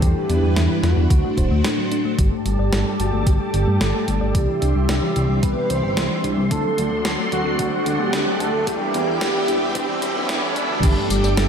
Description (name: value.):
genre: synthwave.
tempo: 111 BPM.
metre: 4/4.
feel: straight.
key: G major.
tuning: A4 = 442 Hz.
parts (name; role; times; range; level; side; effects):
wide unison lead; melody; 0.0-11.5 s; E4 to C5; -24 LUFS; right 1 dB; tape echo.
string machine, full ensemble; sustained chords; 0.0-11.5 s; G3 to D6; -26 LUFS; right 1 dB; ensemble chorus, sidechain pumping.
thumb-piano-like synth pluck; arpeggios; 0.0-11.5 s; E3 to D5; -27 LUFS; left 3 dB; chorus, ping-pong delay.
dark detuned saw bass; bass; 0.0-11.5 s; D1 to G2; -22 LUFS; equal; none.
clean 12-bit digital drum machine; drums; 0.0-11.5 s; crash cymbal, hi-hat, snare drum, tambourine; -26 LUFS; equal; none.
electronic kick drum; drums; 0.0-10.9 s; none; -20 LUFS; equal; none.
mellow synth brass; stabs; 2.2-11.5 s; G2 to F#5; -28 LUFS; right 1 dB; chorus.
riser; sound effects; 5.6-10.8 s; none; -31 LUFS; right 1 dB; none.
room: wet lush hall reverb, RT60 1.8 s, digital ambience.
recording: dreamy mix soaked in reverb, high-pass filter.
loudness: -17 LUFS.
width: side -7 dB against mid.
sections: 0.0-2.2 A section; 2.2-10.8 B section.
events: break 1.6-2.2; filter sweep on string machine 2.2-10.8; filter sweep on synth arpeggio sound 2.2-10.8; filter sweep on analog polysynth 2.2-10.8; filter sweep 2.2-10.8; riser 5.6-10.8.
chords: 0.0 Em7; 1.1 D7; 2.2 Gsus2; 4.3 Cadd9; 6.5 D7; 8.7 Em7; 10.8 Gsus2.